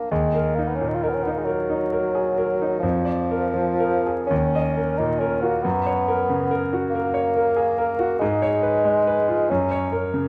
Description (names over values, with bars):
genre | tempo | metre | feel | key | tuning
classical, romantic duo for bassoon and grand piano | 38-49 BPM (dotted quarters) | 6/8 | rubato | Eb minor | A4 = 440 Hz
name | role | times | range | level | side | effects
mellow bassoon | melody | 0.0-9.9 s | F3 to F4 | -24 LUFS | equal | none
bright grand piano | accompaniment | 0.0-10.3 s | Eb2 to Eb5 | -26 LUFS | equal | none
room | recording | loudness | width
wet recital hall reverb, RT60 1.4 s | dark, warm production, vinyl crackle | -22 LUFS | mono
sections
0.1-10.3 A section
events
none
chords
0.1 Ebm; 2.8 Bb7/F; 4.3 Ebm; 5.6 Gb; 8.2 Db7/Ab; 9.5 Gb